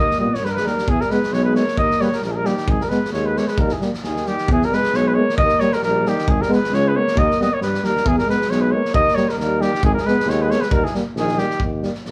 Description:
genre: balkan folk, Balkan brass band.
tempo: 134 BPM.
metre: 2/4.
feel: swing 54% on 16ths.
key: Eb phrygian dominant.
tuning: A4 = 439 Hz.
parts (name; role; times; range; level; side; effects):
clear flugelhorn; melody; 0.0-11.6 s; G4 to Eb5; -23 LUFS; equal; none.
mellow alto saxophone; second line; 0.0-11.6 s; Eb3 to Cb4; -27 LUFS; equal; none.
mellow tuba; bass; 0.0-12.1 s; Ab1 to Bb2; -25 LUFS; equal; none.
loose indie drum kit; percussion; 0.1-12.1 s; kick drum, snare drum; -27 LUFS; equal; none.
mellow euphonium; accompaniment; 0.2-11.9 s; Bb3 to B3; -29 LUFS; equal; none.
warm euphonium; accompaniment; 0.2-11.9 s; G3 to G#3; -28 LUFS; equal; none.
room: moderate large studio reverb, RT60 1.0 s.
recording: band playing live in one room.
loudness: -19 LUFS.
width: mono.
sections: 0.0-4.5 A section; 4.5-11.6 A section.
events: none.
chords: 0.0 Eb; 0.9 E; 1.8 Eb; 2.7 Abm; 3.6 Eb; 4.5 E; 5.4 Eb; 6.3 Abm; 7.2 Eb; 8.1 E; 8.9 Eb; 9.8 Abm; 10.7 Eb.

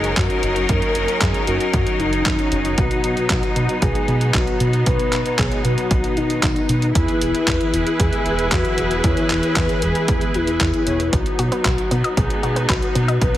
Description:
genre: italo disco.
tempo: 115 BPM.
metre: 4/4.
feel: straight.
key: B major.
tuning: A4 = 438 Hz.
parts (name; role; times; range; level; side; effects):
soft octave-layered synth lead; melody; 0.0-13.4 s; D#4 to B4; -23 LUFS; left 2 dB; chorus, tremolo, ping-pong delay.
clear symphonic string section; sustained chords; 0.0-13.4 s; E3 to B4; -24 LUFS; equal; none.
mellow synth brass; stabs; 0.0-11.1 s; B2 to C#5; -27 LUFS; right 2 dB; chorus.
chorused synth bass; bass; 0.0-13.3 s; E1 to B2; -22 LUFS; equal; none.
detuned 8-bit digital drum machine; drums; 0.0-13.4 s; handclaps, hi-hat; -25 LUFS; equal; overdrive.
electronic kick drum; drums; 0.2-13.3 s; none; -23 LUFS; equal; overdrive.
analog pluck; arpeggios; 11.1-13.3 s; B3 to D#5; -27 LUFS; left 1 dB; chorus, tape echo.
room: light reverb.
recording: heavily compressed radio sound, multiband compression.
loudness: -16 LUFS.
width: side -13 dB against mid.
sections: 0.0-13.4 A section.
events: none.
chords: 0.0 F#6; 2.8 B; 7.0 E; 11.1 B.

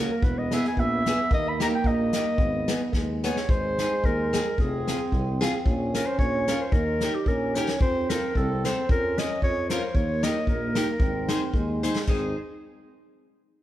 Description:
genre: alpine folk, alpine dance band.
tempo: 111 BPM.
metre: 2/4.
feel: swing 54% on 8ths, rubato.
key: G# minor, Ab major from 3.5 s.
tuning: A4 = 440 Hz.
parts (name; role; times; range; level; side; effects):
dark clarinet; melody; 0.0-12.4 s; G4 to B5; -29 LUFS; equal; none.
warm euphonium; second line; 0.0-12.3 s; G3 to Eb4; -30 LUFS; right 2 dB; none.
picked steel-string acoustic guitar; accompaniment; 0.0-12.4 s; A#3 to C5; -32 LUFS; left 1 dB; none.
mellow tuba; bass; 0.0-12.3 s; E1 to F2; -30 LUFS; equal; none.
unplugged drum kit; drums; 0.2-12.2 s; crash cymbal, hi-hat, kick drum, snare drum; -27 LUFS; equal; none.
room: moderate plate reverb, RT60 2.2 s.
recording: heard from further back in the room.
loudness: -22 LUFS.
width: side -13 dB against mid.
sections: 0.0-3.5 A section; 3.5-12.1 B section; 12.1-13.2 C section.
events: drum fill 2.9-3.5, 7.5, 11.8.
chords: 0.2 E; 1.3 D#; 2.4 G#m; 3.5 Ab; 4.6 Fm; 5.7 Bbm; 6.7 Eb; 7.8 F; 8.9 Bbm/F; 10.0 Eb; 11.0 Ab.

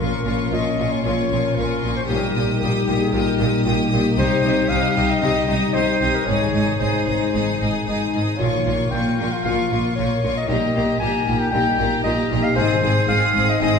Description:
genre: cinematic, heroic adventure film score.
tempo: 115 BPM.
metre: 4/4.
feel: straight.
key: Bb dorian.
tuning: A4 = 442 Hz.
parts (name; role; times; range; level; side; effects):
rich symphonic violin section; melody; 0.0-13.8 s; Bb5 to Eb6; -30 LUFS; left 1 dB; none.
clear symphonic violin section; second line; 0.0-13.8 s; F4 to Ab4; -27 LUFS; left 2 dB; none.
warm clarinet; second line; 0.0-13.8 s; G4 to Ab5; -23 LUFS; left 2 dB; none.
rich symphonic viola section; accompaniment; 0.0-13.8 s; Bb3 to Eb4; -27 LUFS; right 1 dB; none.
warm French horn section; sustained chords; 0.0-13.8 s; F3 to F4; -26 LUFS; left 4 dB; none.
concert harp; arpeggios; 0.0-13.8 s; Ab2 to C6; -26 LUFS; left 6 dB; none.
rich symphonic cello section; bass; 0.0-13.7 s; Ab2 to C3; -27 LUFS; right 2 dB; none.
warm symphonic double bass section; bass; 0.0-13.7 s; Ab1 to C2; -26 LUFS; right 3 dB; none.
room: wet recital hall reverb, RT60 1.4 s.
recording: recorded in a church or concert hall.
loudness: -17 LUFS.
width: side -6 dB against mid.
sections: 0.0-13.8 A section.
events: none.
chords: 0.0 Bbm; 2.1 Eb/Bb; 4.2 Cm; 6.3 Ab; 8.4 Bbm; 10.5 Eb/Bb; 12.6 Ab.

